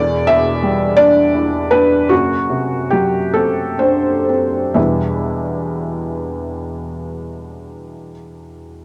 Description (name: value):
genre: neoclassical minimalist piano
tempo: 41-59 BPM (dotted quarters)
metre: 6/8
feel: rubato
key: E minor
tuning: A4 = 438 Hz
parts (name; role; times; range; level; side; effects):
- felt-muted upright piano; solo; 0.0-8.8 s; E1 to E5; -17 LUFS; equal; cassette tape
room: wet booth ambience, RT60 0.2 s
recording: home recording on cassette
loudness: -16 LUFS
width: mono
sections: 0.0-4.8 A section; 4.8-8.8 B section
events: slowing down 0.0-4.8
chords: 0.0 Em7; 2.1 F#dim; 4.8 Em7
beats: 0.98 | 2.11 3.35 | 4.76 6.20 | 7.64